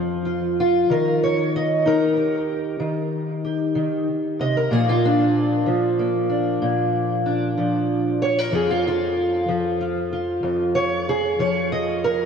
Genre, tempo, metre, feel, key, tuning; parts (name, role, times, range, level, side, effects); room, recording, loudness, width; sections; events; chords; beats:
acoustic country blues, solo or duo; 63 BPM (dotted quarters); 12/8; straight; Bb major; A4 = 442 Hz
fingerpicked steel-string acoustic guitar; solo; 0.0-12.3 s; F2 to Eb5; -19 LUFS; equal; lush chorus, diffuse ambient delay
wet lush hall reverb, RT60 3.2 s; dreamy mix soaked in reverb, cassette tape; -19 LUFS; side -6 dB against mid
0.0-12.3 A section
steel-string acoustic guitar solo 0.0-12.3
0.0 N.C.; 0.9 Eb; 4.7 Bb; 8.5 N.C.
| 0.89 1.84 2.80 3.75 | 4.71 5.66 6.61 7.57 | 8.52 9.48 10.43 11.39